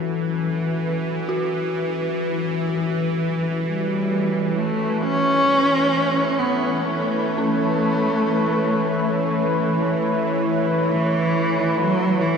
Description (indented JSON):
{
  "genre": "dark ambient drone",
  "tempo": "free time",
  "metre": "none",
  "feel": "none",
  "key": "F# minor",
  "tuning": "A4 = 440 Hz",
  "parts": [
    { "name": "sweeping resonant pad", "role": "sustained chords", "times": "0.0-12.4 s", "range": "F#3 to C#5", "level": "-25 LUFS", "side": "equal", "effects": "chorus" },
    { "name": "dark detuned synth bell", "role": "arpeggios", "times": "0.0-12.4 s", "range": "C#4 to F#4", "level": "-31 LUFS", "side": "right 1 dB", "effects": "chorus, ping-pong delay" },
    { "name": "bowed-like drone", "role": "drone", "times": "0.0-12.4 s", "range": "E3", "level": "-24 LUFS", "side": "left 1 dB", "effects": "built-in reverb" },
    { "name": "dark cello", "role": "melody", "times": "3.7-12.4 s", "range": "E3 to C#4", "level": "-21 LUFS", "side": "equal", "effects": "ping-pong delay" }
  ],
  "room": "wet cathedral reverb, RT60 5.8 s",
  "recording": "lossy compression artefacts",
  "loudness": "-19 LUFS",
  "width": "side -6 dB against mid",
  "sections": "0.0-12.4 A section",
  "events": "fade-in on analog synth pad 0.0-12.4",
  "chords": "0.0 F#m7",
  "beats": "free time"
}